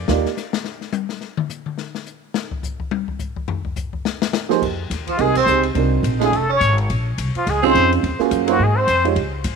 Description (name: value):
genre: jazz, small-group swing and bop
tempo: 211 BPM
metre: 4/4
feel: swing 59% on 8ths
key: C minor, F minor from 4.6 s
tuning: A4 = 440 Hz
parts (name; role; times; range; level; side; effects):
- upright bass; bass; 0.0-0.2, 4.6-9.6 s; F1 to Ab2; -21 LUFS; left 1 dB; none
- dark baby grand piano; accompaniment; 0.1-0.3, 4.5-9.2 s; F3 to D5; -20 LUFS; right 13 dB; none
- open jazz drum kit; drums; 0.1-9.5 s; crash cymbal, hi-hat, kick drum, ride cymbal, snare drum, toms; -26 LUFS; left 8 dB; none
- trumpet with plunger mute; melody; 5.1-9.1 s; F4 to C#5; -20 LUFS; left 4 dB; tape echo
- growling tenor saxophone; second line; 5.1-9.0 s; F3 to C#4; -24 LUFS; right 12 dB; none
room: light reverb, small room ambience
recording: 1960s-style stereo with parts hard left and right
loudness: -17 LUFS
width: side -5 dB against mid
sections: 0.0-4.6 A section; 4.6-9.6 B section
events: drum solo 0.1-4.6; band accent 5.3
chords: 0.1 Ebmaj7; 1.2 N.C.; 4.1 Cm7; 4.6 Fm11; 5.8 Cm7b5; 6.3 Faug; 6.9 Bbm11; 8.0 Ebm11; 8.6 Ab6